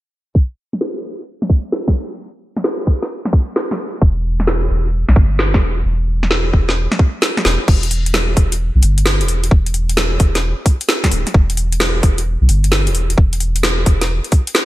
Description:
UK garage, two-step garage; 131 BPM; 4/4; swing 67% on 16ths; E minor; A4 = 440 Hz
electronic kick drum; drums; 0.4-14.4 s; -12 LUFS; equal
garage drum kit; drums; 0.7-14.7 s; crash cymbal, hi-hat, snare drum; -18 LUFS; equal; gated reverb
soft dub sub bass; bass; 4.0-14.2 s; D1 to B1; -16 LUFS; equal; sidechain pumping
digital ambience; bright 1980s-style digital production, low-pass filter; -14 LUFS; side -16 dB against mid
0.4-7.7 A section; 7.7-14.7 B section
filter sweep 0.4-7.7; drum fill 7.5

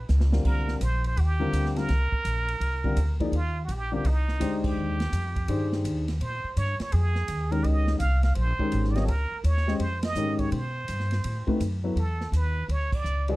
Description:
modal jazz; 167 BPM; 4/4; swing 64% on 8ths; A4 = 440 Hz
trumpet with plunger mute; melody; 0.0-13.4 s; Eb4 to F5; -32 LUFS; right 3 dB
upright bass; bass; 0.0-13.4 s; Ab1 to B2; -25 LUFS; equal
swinging big-band drum kit; drums; 0.1-13.3 s; crash cymbal, hi-hat, kick drum, ride cymbal, snare drum; -35 LUFS; right 1 dB
warm grand piano; accompaniment; 0.3-13.4 s; C#3 to Eb5; -28 LUFS; left 2 dB
little or no reverb; dark, warm production; -24 LUFS; side -19 dB against mid
0.5-12.0 A section; 12.0-13.4 B section
drum fill 0.1-0.5; band accent 4.6, 10.0, 12.9
0.5 Cm11; 6.2 Bbm11; 10.5 B7(no3); 12.0 E7sus4

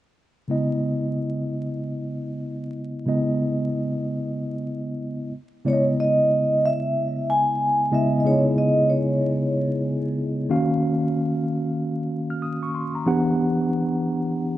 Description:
R&B; 93 BPM; 4/4; swing 63% on 16ths; C# dorian; A4 = 440 Hz
mellow tine electric piano; accompaniment; 0.5-14.6 s; C#3 to E#6; -22 LUFS; equal; medium stereo tremolo
vibraphone with soft mallets; melody; 5.7-9.8 s; C#5 to G#5; -22 LUFS; equal; tape echo
light reverb, small room ambience; vinyl crackle, nothing above 10.6 kHz; -21 LUFS; side -14 dB against mid
0.5-5.6 A section; 5.6-14.6 B section
0.5 C#m9; 5.3 N.C.; 5.6 C#m9; 10.5 D#m9; 13.1 Em9

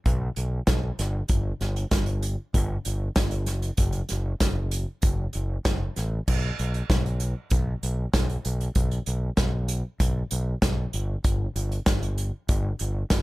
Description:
indie rock; 97 BPM; 4/4; straight; A4 = 440 Hz
growling fingered electric bass; bass; 0.1-13.2 s; F#1 to B1; -27 LUFS; equal; overdrive
unplugged drum kit; drums; 0.1-13.2 s; crash cymbal, hi-hat, kick drum, snare drum; -25 LUFS; equal
little or no reverb; -24 LUFS; side -19 dB against mid
0.0-13.2 A section

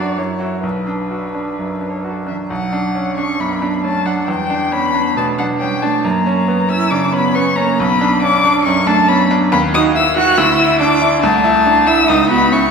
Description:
quick classical-period movement for piano trio; 137 BPM; 4/4; rubato; B minor; A4 = 440 Hz
muted violin; melody; 0.0-12.7 s; A4 to F#6; -17 LUFS; left 4 dB
muted cello; second line; 0.0-12.6 s; E3 to F#4; -19 LUFS; right 5 dB
bright grand piano; accompaniment; 0.0-12.7 s; B1 to F#4; -16 LUFS; right 1 dB
wet scoring stage reverb, RT60 1.7 s; minimal, uncompressed stereo recording; -13 LUFS; side -5 dB against mid
0.0-2.5 A section; 2.5-12.7 B section
0.2 F#5; 0.6 Bm; 4.3 Em7; 6.0 F#; 7.8 Bm; 9.5 Badd11/D# (rootless); 10.4 Dsus2; 11.2 Am/C; 12.1 F#5/C#

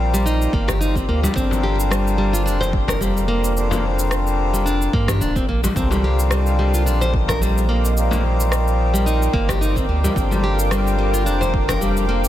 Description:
organic downtempo; 109 BPM; 4/4; swing 55% on 16ths; C minor; A4 = 438 Hz
pedal harmonium; accompaniment; 0.0-12.3 s; D3 to Bb4; -24 LUFS; left 4 dB; sidechain pumping, ping-pong delay
warm sub bass; bass; 0.0-12.3 s; D1 to G2; -20 LUFS; right 1 dB; sidechain pumping
nylon-string guitar; arpeggios; 0.1-12.3 s; G3 to C5; -23 LUFS; equal; ping-pong delay
electronic cabasa and rim click; drums; 0.1-12.3 s; -28 LUFS; left 1 dB; soft clipping on snare
electronic kick drum; drums; 0.5-11.8 s; -23 LUFS; right 1 dB
frame drum; percussion; 0.7-11.8 s; -29 LUFS; left 5 dB
warm analog pad; sustained chords; 5.8-12.3 s; Bb4 to D6; -27 LUFS; right 2 dB; chorus, sidechain pumping
light reverb, digital ambience; dense, heavily limited modern master; -16 LUFS; side -12 dB against mid
0.0-12.3 A section
0.0 Cm11; 1.4 Gm7; 5.8 Cm11; 10.2 Gm7

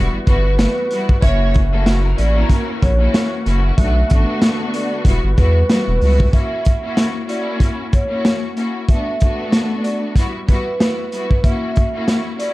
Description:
hip hop, boom-bap hip-hop; 94 BPM; 4/4; swing 56% on 16ths; A4 = 440 Hz
clear symphonic string section; accompaniment; 0.0-12.5 s; G3 to F#4; -23 LUFS; left 1 dB; cassette tape, high-pass filter, low-pass filter
percussive tonewheel organ; sustained chords; 0.0-6.3 s; D3 to F#4; -31 LUFS; equal; overdrive, fast rotary speaker, high-pass filter, low-pass filter
saturated sub bass; bass; 0.0-6.3 s; E1 to E2; -16 LUFS; equal
vibraphone with soft mallets; melody; 0.3-12.5 s; B4 to E5; -24 LUFS; right 1 dB; high-pass filter, low-pass filter, slapback echo
crunchy breakbeat drum kit; drums; 0.3-12.5 s; hi-hat, kick drum, snare drum; -16 LUFS; equal
warm studio string section; stabs; 1.2-2.8 s; A3 to C#5; -27 LUFS; equal; high-pass filter, low-pass filter, slapback echo
studio ambience; dark, warm production; -14 LUFS; side -18 dB against mid
0.0-6.3 A section; 6.3-12.5 B section
0.0 Emadd9; 1.2 F#7; 3.8 Bm7; 5.1 Emadd9; 6.3 F#7; 8.9 Bm7; 10.2 Emadd9; 11.4 F#7

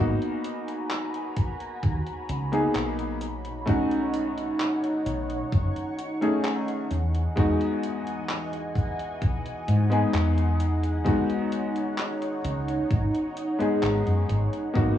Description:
vaporwave; 65 BPM; 4/4; straight; G# minor; A4 = 440 Hz
clear electric grand piano; accompaniment; 0.0-15.0 s; G#3 to G#4; -28 LUFS; left 1 dB; wide subtle chorus, tape echo
lush unison pad; sustained chords; 0.0-15.0 s; E3 to C#6; -32 LUFS; right 1 dB; chorus, phaser
woody fretless electric bass; bass; 0.0-14.9 s; F#1 to G#2; -26 LUFS; equal
detuned 8-bit digital drum machine; drums; 0.2-14.9 s; handclaps, hi-hat; -36 LUFS; equal; overdrive
electronic kick drum; drums; 1.4-14.9 s; -25 LUFS; equal; overdrive
light reverb; worn, warbling old tape, cassette tape, warbly pitch drift, small room ambience; -24 LUFS; side -11 dB against mid
0.0-15.0 A section
0.0 G#m9; 3.2 B9; 6.9 Emaj9; 11.1 C#9sus4

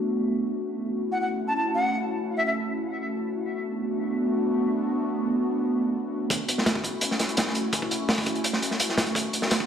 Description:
drum and bass, jungle; 168 BPM; 4/4; straight; F# minor; A4 = 442 Hz
airy breathy pad; sustained chords; 0.0-9.7 s; A3 to F#4; -26 LUFS; equal; chorus, vintage 12-bit sampler grit
bright silver concert flute; melody; 1.1-2.5 s; E5 to A5; -28 LUFS; equal; dub echo
crunchy breakbeat drum kit; drums; 6.3-9.7 s; hi-hat, kick drum, snare drum; -24 LUFS; equal; high-pass filter on kick, high-pass filter on hats, high-pass filter on snare, high-pass filter on room
wet plate reverb, RT60 1.1 s, small room ambience; played on a big sound system in a bare room, stone room reverb; -24 LUFS; side -8 dB against mid
0.0-6.3 A section; 6.3-9.7 B section
filter sweep on analog synth pad 0.0-6.3; build-up 6.3-9.7
0.0 Bm7; 0.6 F#m7; 3.4 Bm7; 6.3 F#m7; 9.2 Bm7

